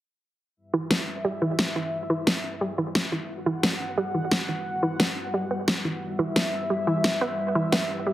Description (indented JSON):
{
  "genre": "dark technical drum and bass",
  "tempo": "176 BPM",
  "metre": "4/4",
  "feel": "straight",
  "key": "E minor",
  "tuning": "A4 = 440 Hz",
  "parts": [
    { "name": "dark analog pad", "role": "sustained chords", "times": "0.6-8.1 s", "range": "G3 to F#5", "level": "-31 LUFS", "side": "left 1 dB", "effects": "chorus" },
    { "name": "analog pluck", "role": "arpeggios", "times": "0.7-8.1 s", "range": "E3 to B3", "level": "-28 LUFS", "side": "right 1 dB", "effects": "chorus, digital delay" },
    { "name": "electronic snare drum", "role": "drums", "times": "0.9-7.8 s", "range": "none", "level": "-25 LUFS", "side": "equal", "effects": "none" }
  ],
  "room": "moderate digital room reverb, RT60 1.2 s, digital ambience",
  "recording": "heavily compressed radio sound",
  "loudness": "-24 LUFS",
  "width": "side -14 dB against mid",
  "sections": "0.6-8.1 A section",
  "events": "filter sweep on synth arpeggio sound 0.6-8.1",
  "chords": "0.6 Em"
}